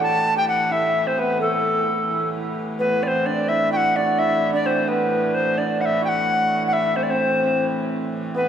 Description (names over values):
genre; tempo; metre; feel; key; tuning
medieval dance; 86 BPM (dotted quarters); 6/8; straight; A dorian; A4 = 440 Hz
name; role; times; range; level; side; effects
tenor recorder; melody; 0.0-8.5 s; A4 to A5; -20 LUFS; left 2 dB; none
hammered dulcimer; second line; 0.0-8.5 s; A3 to A4; -25 LUFS; right 3 dB; none
clear hurdy-gurdy; drone; 0.0-8.5 s; A2 to E3; -27 LUFS; right 1 dB; none
room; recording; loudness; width
wet concert hall reverb, RT60 1.9 s; recorded in a church or concert hall; -18 LUFS; side -8 dB against mid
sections
0.0-2.8 A section; 2.8-8.5 B section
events
none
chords
none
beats
| 0.01 0.71 | 1.40 2.10 | 2.79 3.49 | 4.18 4.88 | 5.57 6.26 | 6.96 7.65 | 8.34